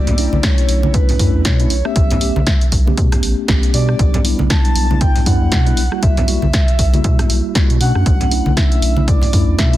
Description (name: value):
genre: deep house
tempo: 118 BPM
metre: 4/4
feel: swing 58% on 16ths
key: B minor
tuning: A4 = 442 Hz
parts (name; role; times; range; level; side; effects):
- breathy flute-like synth lead; melody; 0.0-9.8 s; B4 to A5; -24 LUFS; equal; wide subtle chorus, digital delay
- mellow tine electric piano; stabs; 0.0-9.8 s; G3 to G4; -22 LUFS; equal; medium stereo tremolo, sidechain pumping, digital delay
- round analog bass; bass; 0.0-9.8 s; A1 to B2; -17 LUFS; equal; sidechain pumping
- punchy analog drum machine; drums; 0.1-9.8 s; hi-hat, rim click, snare drum; -21 LUFS; equal; none
- congas; percussion; 0.1-9.3 s; none; -22 LUFS; right 1 dB; none
- electronic kick drum; drums; 0.4-9.7 s; none; -15 LUFS; equal; none
room: digital ambience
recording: dense, heavily limited modern master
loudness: -12 LUFS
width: side -14 dB against mid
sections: 0.0-9.8 A section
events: none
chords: 0.0 Bm11; 2.0 A9/B; 4.0 G6/B; 6.0 F#7b9/B; 8.1 Bm11